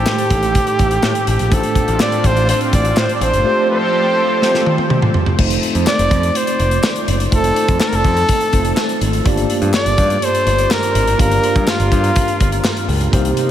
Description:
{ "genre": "1980s-style pop", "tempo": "124 BPM", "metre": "4/4", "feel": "straight", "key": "G minor", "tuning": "A4 = 439 Hz", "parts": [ { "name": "clear flugelhorn", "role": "melody", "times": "0.0-12.9 s", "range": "F4 to D5", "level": "-17 LUFS", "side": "equal", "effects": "tape echo" }, { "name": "tine electric piano", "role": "accompaniment", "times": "0.0-13.5 s", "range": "G2 to F5", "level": "-20 LUFS", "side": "right 1 dB", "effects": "medium stereo tremolo" }, { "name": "modern bright picked electric bass", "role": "bass", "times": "0.0-13.3 s", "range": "F1 to A2", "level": "-18 LUFS", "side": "equal", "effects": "none" }, { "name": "modern studio drum kit", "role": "drums", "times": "0.1-13.5 s", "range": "crash cymbal, hi-hat, kick drum, snare drum, tambourine, toms", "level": "-18 LUFS", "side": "equal", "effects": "none" }, { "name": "group handclap", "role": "percussion", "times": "0.1-12.8 s", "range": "none", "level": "barely audible", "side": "none", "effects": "none" }, { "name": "lush unison pad", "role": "sustained chords", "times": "1.5-5.4, 13.1-13.5 s", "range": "C3 to A4", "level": "-24 LUFS", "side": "equal", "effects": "chorus" } ], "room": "wet huge ambient reverb, RT60 8.9 s", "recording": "dreamy mix soaked in reverb", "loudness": "-13 LUFS", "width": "side -11 dB against mid", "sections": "0.0-5.4 A section; 5.4-13.5 B section", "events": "drum fill 4.4-5.4", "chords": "0.0 Am7b5; 1.5 Dm7/A; 3.5 Fadd9; 5.4 F7; 9.3 Gm7" }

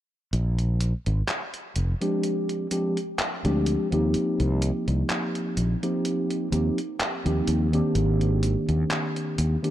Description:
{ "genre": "vaporwave", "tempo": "63 BPM", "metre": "4/4", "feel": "swing 54% on 16ths", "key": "unclear", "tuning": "A4 = 442 Hz", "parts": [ { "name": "fretless electric bass", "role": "bass", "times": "0.3-9.6 s", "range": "F1 to Eb2", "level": "-23 LUFS", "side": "equal", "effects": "none" }, { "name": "detuned 8-bit digital drum machine", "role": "drums", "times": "0.3-9.7 s", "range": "handclaps, hi-hat", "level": "-31 LUFS", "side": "equal", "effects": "none" }, { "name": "mellow tine electric piano", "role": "accompaniment", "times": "2.0-9.7 s", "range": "Eb3 to G4", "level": "-25 LUFS", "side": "equal", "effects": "lush chorus, tape echo" } ], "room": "light reverb", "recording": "dark, warm production", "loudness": "-23 LUFS", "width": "side -12 dB against mid", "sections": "0.3-9.7 A section", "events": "none", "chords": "0.3 Bb13; 4.1 Eb6; 8.0 Abmaj9#11" }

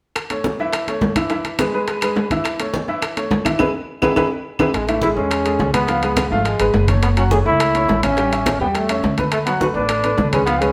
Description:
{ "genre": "latin, salsa", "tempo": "210 BPM", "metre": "4/4", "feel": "straight", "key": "A major", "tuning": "A4 = 440 Hz", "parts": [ { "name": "bongos", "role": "percussion", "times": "0.2-10.7 s", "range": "none", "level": "-32 LUFS", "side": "equal", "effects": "none" }, { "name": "claves", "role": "percussion", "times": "0.2-4.7 s", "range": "none", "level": "-33 LUFS", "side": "equal", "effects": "none" }, { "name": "congas", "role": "percussion", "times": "0.2-10.7 s", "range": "none", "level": "-29 LUFS", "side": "equal", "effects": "none" }, { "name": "timbales", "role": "percussion", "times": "0.2-10.7 s", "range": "none", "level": "-26 LUFS", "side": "equal", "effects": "none" }, { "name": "bright upright piano", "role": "accompaniment", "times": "0.3-10.7 s", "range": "E3 to G5", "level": "-23 LUFS", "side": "equal", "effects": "none" }, { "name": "bright trombone", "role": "melody", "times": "4.7-10.7 s", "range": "G#3 to G#4", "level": "-22 LUFS", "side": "equal", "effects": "none" }, { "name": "upright bass", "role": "bass", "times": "4.7-10.7 s", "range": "F#1 to E2", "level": "-24 LUFS", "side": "equal", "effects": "none" } ], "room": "wet stone room reverb, RT60 1.0 s", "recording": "band playing live in one room", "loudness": "-18 LUFS", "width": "mono", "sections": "0.2-4.7 A section; 4.7-10.7 B section", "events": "drum fill 3.6-4.7; band accent 3.6-4.7", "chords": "0.2 A; 1.3 E; 2.4 A; 3.6 E; 4.7 Amaj7; 5.9 C#7; 7.0 F#m7; 8.2 A7; 9.3 D6" }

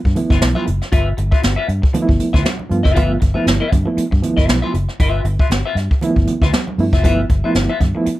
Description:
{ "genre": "funk", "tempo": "118 BPM", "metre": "4/4", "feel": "swing 56% on 16ths", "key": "G mixolydian", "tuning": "A4 = 437 Hz", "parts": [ { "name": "clean electric guitar", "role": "accompaniment", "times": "0.1-8.1 s", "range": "F4 to E5", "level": "-23 LUFS", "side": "left 3 dB", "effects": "phaser" }, { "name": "vintage muted fingered electric bass", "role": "bass", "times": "0.1-8.1 s", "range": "F#1 to G2", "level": "-19 LUFS", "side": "equal", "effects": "none" }, { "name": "jazz brush drum kit", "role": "drums", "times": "0.1-8.2 s", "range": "hi-hat, kick drum, snare drum", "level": "-16 LUFS", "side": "equal", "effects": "none" }, { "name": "reed electric piano", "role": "stabs", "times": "0.2-8.1 s", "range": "F3 to F4", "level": "-19 LUFS", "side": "right 2 dB", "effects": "fast tremolo" }, { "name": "congas", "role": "percussion", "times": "0.2-7.9 s", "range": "none", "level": "-28 LUFS", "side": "right 4 dB", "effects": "none" } ], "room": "little or no reverb", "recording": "none", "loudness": "-14 LUFS", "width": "side -16 dB against mid", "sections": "0.0-8.2 A section", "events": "none", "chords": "0.0 G13" }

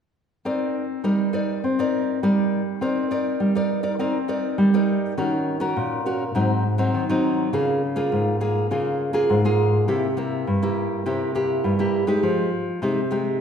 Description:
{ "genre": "samba", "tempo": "102 BPM", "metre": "4/4", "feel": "straight", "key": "C minor", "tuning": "A4 = 444 Hz", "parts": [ { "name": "nylon-string guitar", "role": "solo", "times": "0.5-13.4 s", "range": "G2 to D5", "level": "-20 LUFS", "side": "equal", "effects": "none" } ], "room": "wet recital hall reverb, RT60 1.5 s", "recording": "recorded in a church or concert hall", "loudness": "-20 LUFS", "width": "side -7 dB against mid", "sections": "0.4-2.8 A section; 2.8-13.4 B section", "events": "none", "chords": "0.4 Cm9; 5.2 Ebm7; 6.3 Ab7; 7.5 Db6; 9.9 C7; 12.2 Fm9" }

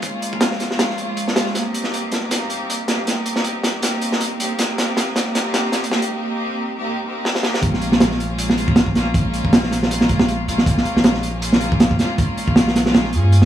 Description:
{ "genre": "drum and bass, jungle", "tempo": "158 BPM", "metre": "4/4", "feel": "swing 55% on 16ths", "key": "Bb dorian", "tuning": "A4 = 436 Hz", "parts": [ { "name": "rich chamber string section", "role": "sustained chords", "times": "0.0-13.5 s", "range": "Ab3 to Ab4", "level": "-22 LUFS", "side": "equal", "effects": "low-pass filter" }, { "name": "crunchy breakbeat drum kit", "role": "drums", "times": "0.0-13.5 s", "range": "hi-hat, kick drum, snare drum", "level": "-18 LUFS", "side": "right 1 dB", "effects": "high-pass filter on kick, high-pass filter on hats, high-pass filter on snare, high-pass filter on room" }, { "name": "saturated sub bass", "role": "bass", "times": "0.3-13.5 s", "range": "Bb1 to G2", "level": "-21 LUFS", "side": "equal", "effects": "high-pass filter" } ], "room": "light reverb, small room ambience", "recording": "none", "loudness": "-16 LUFS", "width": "side -11 dB against mid", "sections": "0.0-7.6 A section; 7.6-13.5 B section", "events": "build-up 0.0-7.6; drum fill 1.6-6.1, 7.2-7.6; break 6.1-7.6; drop 7.6-13.5", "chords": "0.0 Bbm7; 1.6 Cm7; 7.6 Bbm7" }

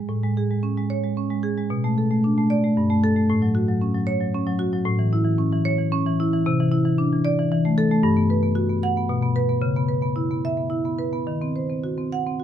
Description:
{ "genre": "classical, contemporary piece for solo marimba", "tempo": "113 BPM", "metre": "3/4", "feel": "rubato", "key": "A lydian", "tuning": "A4 = 437 Hz", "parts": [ { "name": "marimba with medium hard mallets", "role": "solo", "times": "0.0-12.4 s", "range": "G2 to F#5", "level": "-20 LUFS", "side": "equal", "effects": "none" } ], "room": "light reverb", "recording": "close, detailed microphones", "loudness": "-20 LUFS", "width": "side -10 dB against mid", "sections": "0.1-12.4 A section", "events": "none", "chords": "0.1 Amaj7; 1.7 Bm7; 2.8 Gsus2; 3.3 A6; 4.9 C#m/A; 6.4 Cadd9; 7.5 Esus4; 8.0 Gmaj7; 9.1 N.C.; 9.6 C#m7; 11.3 D#m6" }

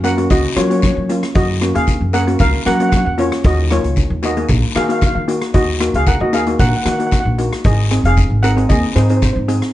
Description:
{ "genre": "calypso", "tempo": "114 BPM", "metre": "4/4", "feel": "straight", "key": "unclear", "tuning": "A4 = 439 Hz", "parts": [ { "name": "steel pan", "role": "melody", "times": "0.0-9.4 s", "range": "D#4 to F#5", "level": "-19 LUFS", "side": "equal", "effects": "none" }, { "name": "steel pan", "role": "accompaniment", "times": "0.0-9.7 s", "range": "F#3 to G#4", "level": "-20 LUFS", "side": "equal", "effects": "none" }, { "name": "upright bass", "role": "bass", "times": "0.0-9.6 s", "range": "E#1 to F#3", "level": "-17 LUFS", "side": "equal", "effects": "none" }, { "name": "street-band drum kit", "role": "drums", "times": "0.0-9.7 s", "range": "hi-hat, kick drum, rim click", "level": "-19 LUFS", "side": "equal", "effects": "none" }, { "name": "guiro", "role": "percussion", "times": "0.0-9.3 s", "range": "none", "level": "-28 LUFS", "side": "left 6 dB", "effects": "none" } ], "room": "moderate studio ambience, RT60 0.5 s", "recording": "dark, warm production, nothing above 10.3 kHz", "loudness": "-13 LUFS", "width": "side -14 dB against mid", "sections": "0.0-9.7 A section", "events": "none", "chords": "0.0 F#; 3.4 D#madd9; 7.6 G#" }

